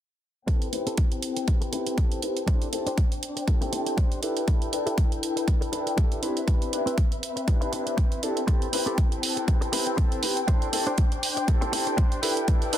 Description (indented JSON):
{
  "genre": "filtered disco house",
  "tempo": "120 BPM",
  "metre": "4/4",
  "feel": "swing 56% on 16ths",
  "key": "A minor",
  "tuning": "A4 = 440 Hz",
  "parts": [
    { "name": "bright grand piano", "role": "accompaniment", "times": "0.5-12.8 s", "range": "C4 to B4", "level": "-30 LUFS", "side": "left 2 dB", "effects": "phaser, sidechain pumping, low-pass filter" },
    { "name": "dark studio string section", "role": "sustained chords", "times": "0.5-12.8 s", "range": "C4 to G5", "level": "-33 LUFS", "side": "left 2 dB", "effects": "sidechain pumping, low-pass filter" },
    { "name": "direct-recorded clean electric guitar", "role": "riff", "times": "0.5-12.7 s", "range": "C4 to C5", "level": "-35 LUFS", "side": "right 2 dB", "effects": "sidechain pumping, low-pass filter" },
    { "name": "electronic hi-hat", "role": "drums", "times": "0.5-12.8 s", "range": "none", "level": "-31 LUFS", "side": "right 5 dB", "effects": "sidechain pumping on hats" },
    { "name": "electronic kick drum", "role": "drums", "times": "0.5-12.6 s", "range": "none", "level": "-23 LUFS", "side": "equal", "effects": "none" },
    { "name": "riser", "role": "sound effects", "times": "12.6-12.8 s", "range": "none", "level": "-42 LUFS", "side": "equal", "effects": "none" }
  ],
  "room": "light reverb",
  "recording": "dense, heavily limited modern master",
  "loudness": "-23 LUFS",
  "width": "side -11 dB against mid",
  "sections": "0.5-12.8 A section",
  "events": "filter sweep 0.5-12.8",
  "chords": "0.5 Am7; 2.5 D7sus4; 4.2 G69; 6.2 Cmaj7; 8.5 Am7; 10.5 D7sus4; 12.2 G69"
}